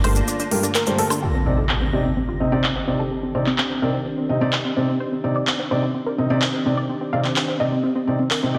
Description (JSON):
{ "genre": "progressive house", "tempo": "127 BPM", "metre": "4/4", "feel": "straight", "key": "C dorian", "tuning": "A4 = 440 Hz", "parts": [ { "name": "evolving wavetable pad", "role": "sustained chords", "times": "0.0-8.6 s", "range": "D3 to G4", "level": "-31 LUFS", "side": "equal", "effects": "chorus, built-in reverb" }, { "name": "tight sequenced synth", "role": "arpeggios", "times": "0.0-8.6 s", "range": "C4 to F5", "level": "-28 LUFS", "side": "equal", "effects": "chorus, phaser, dub echo" }, { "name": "felt-muted upright piano", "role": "stabs", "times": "0.0-8.6 s", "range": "G2 to Eb5", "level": "-25 LUFS", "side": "equal", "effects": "vintage 12-bit sampler grit, low-pass filter, dub echo" }, { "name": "big-room dance drum kit", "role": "drums", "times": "0.0-8.4 s", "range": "handclaps, hi-hat, woodblock", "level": "-28 LUFS", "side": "equal", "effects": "overdrive, low-pass filter on hats, low-pass filter on perc, low-pass filter on snare, low-pass filter on room" }, { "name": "backwards swelling texture", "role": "texture", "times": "0.0-1.2 s", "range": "Bb6", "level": "-42 LUFS", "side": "equal", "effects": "built-in reverb" }, { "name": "cabasa", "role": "percussion", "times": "0.2-1.2 s", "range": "none", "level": "-34 LUFS", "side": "equal", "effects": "none" }, { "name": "impact", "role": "sound effects", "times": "1.2-3.1 s", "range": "none", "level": "-28 LUFS", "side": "equal", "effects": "none" } ], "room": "wet lush hall reverb, RT60 1.9 s", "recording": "dense, heavily limited modern master", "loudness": "-21 LUFS", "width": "mono", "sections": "0.0-1.2 A section; 1.2-8.6 B section", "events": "impact 1.2-3.1; filter sweep on synth arpeggio sound 1.2-8.6; filter sweep on ambient pad 1.2-8.6", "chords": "0.0 Gmadd9; 1.2 Cmadd9", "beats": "0.28 0.75 | 1.22 1.70 2.17 2.64 | 3.11 3.59 4.06 4.53 | 5.00 5.48 5.95 6.42 | 6.89 7.37 7.84 8.31" }